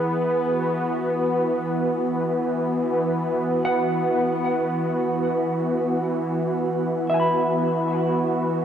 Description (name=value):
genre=ambient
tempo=free time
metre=none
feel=none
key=E major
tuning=A4 = 440 Hz
part: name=warm analog pad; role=sustained chords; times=0.0-8.6 s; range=E3 to B4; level=-21 LUFS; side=equal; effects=chorus, shimmer reverb
part: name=mellow electric guitar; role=arpeggios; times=0.0-8.6 s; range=E5 to B5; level=-27 LUFS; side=equal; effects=tape echo, shimmer reverb
room=wet huge ambient reverb, RT60 8.6 s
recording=cassette tape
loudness=-21 LUFS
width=side -9 dB against mid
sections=0.0-8.6 A section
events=none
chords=0.0 E